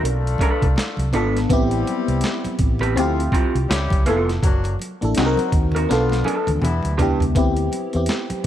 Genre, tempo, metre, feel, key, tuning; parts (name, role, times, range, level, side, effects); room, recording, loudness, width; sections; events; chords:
R&B, neo-soul; 82 BPM; 4/4; swing 59% on 16ths; A4 = 441 Hz
electric guitar through a small old amp; second line; 0.0-7.2 s; B3 to B4; -26 LUFS; right 3 dB
FM electric piano with soft pad layer; accompaniment; 0.0-8.5 s; A#3 to Bb4; -22 LUFS; left 1 dB; chorus, phaser
mellow horn section; stabs; 0.0-7.0 s; E3 to A4; -29 LUFS; left 4 dB
fingered electric bass; bass; 0.0-8.3 s; E#1 to E2; -22 LUFS; equal
boom bap sampler-style drum kit; drums; 0.1-8.5 s; hi-hat, kick drum, snare drum, toms; -22 LUFS; equal
congas; percussion; 0.4-8.4 s; -34 LUFS; right 2 dB
light reverb; -17 LUFS; side -11 dB against mid
0.0-7.4 A section; 7.4-8.5 B section
drum fill 5.9-7.4
0.0 Bm7b5; 1.5 Am9; 3.0 Dm11; 3.7 C#7alt; 4.4 F#7alt; 5.2 Cm7b5; 5.9 Bm7b5; 6.6 Em7; 7.4 D13sus4